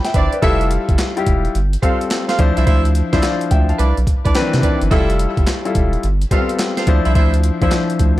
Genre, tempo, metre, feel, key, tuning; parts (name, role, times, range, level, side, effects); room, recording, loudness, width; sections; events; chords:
R&B, new jack swing; 107 BPM; 4/4; swing 65% on 16ths; D dorian; A4 = 438 Hz
clear baby grand piano; accompaniment; 0.0-8.2 s; Eb3 to B5; -19 LUFS; left 3 dB
breakbeat sampler-style drum kit; drums; 0.0-8.2 s; handclaps, hi-hat, kick drum, snare drum; -18 LUFS; equal
warm horn section; stabs; 0.1-7.7 s; D4 to F5; -23 LUFS; right 4 dB; ping-pong delay
round analog bass; bass; 0.1-8.2 s; E1 to C3; -16 LUFS; equal
little or no reverb; dark, warm production; -14 LUFS; side -16 dB against mid
0.0-8.2 A section
0.4 Fmaj9; 1.5 G9sus4; 2.4 Dm9; 3.8 Cmaj9; 4.9 Fmaj9; 6.0 G9sus4; 6.9 Dm9